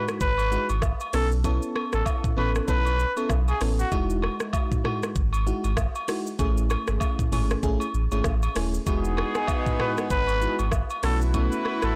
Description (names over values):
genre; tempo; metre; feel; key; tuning
afrobeats; 97 BPM; 4/4; swing 58% on 16ths; E major; A4 = 442 Hz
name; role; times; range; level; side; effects
clear trumpet; melody; 0.0-3.9, 9.4-11.9 s; F#4 to B4; -31 LUFS; equal; analog delay
FM electric piano with soft pad layer; accompaniment; 0.0-12.0 s; G#3 to A4; -33 LUFS; equal; chorus, tremolo
afro-pop drum kit; drums; 0.1-11.9 s; hi-hat, kick drum, rim click, shaker, toms; -30 LUFS; equal; none
sub bass with octave; bass; 0.2-11.9 s; D#1 to B1; -28 LUFS; equal; none
agogo bells and woodblock; percussion; 0.4-11.8 s; none; -36 LUFS; equal; none
warm horn section; second line; 8.9-12.0 s; B3 to B4; -32 LUFS; equal; analog delay
room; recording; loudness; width
little or no reverb; blown-out, overdriven recording, overdrive; -25 LUFS; mono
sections
0.0-12.0 A section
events
none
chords
0.0 Emaj9; 1.1 B9sus4; 3.9 Emaj9; 6.4 Amaj7; 8.9 Emaj9; 11.0 B9sus4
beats
0.21 0.82 | 1.44 2.06 2.68 3.30 | 3.92 4.54 5.16 5.77 | 6.39 7.01 7.63 8.25 | 8.87 9.48 10.10 10.72 | 11.34